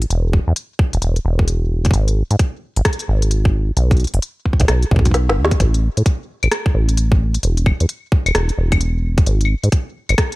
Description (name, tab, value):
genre	IDM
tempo	131 BPM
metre	4/4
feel	swing 62% on 16ths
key	unclear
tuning	A4 = 441 Hz
part	deep acid bass	bass	0.0-10.2 s	E1 to A2	-16 LUFS	equal	none
part	organic electronic drum kit	drums	0.0-10.4 s	claves, hi-hat, rim click, snare drum	-22 LUFS	left 1 dB	small room ambience
part	electronic kick drum	drums	0.3-10.3 s	none	-15 LUFS	equal	small room ambience
room	little or no reverb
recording	none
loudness	-15 LUFS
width	side -21 dB against mid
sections	0.0-10.4 A section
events	drum fill 5.1-5.6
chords	none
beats	| 0.10 0.56 1.02 1.48 | 1.94 2.40 2.85 3.31 | 3.77 4.23 4.68 5.14 | 5.60 6.06 6.52 6.97 | 7.43 7.89 8.35 8.81 | 9.27 9.72 10.18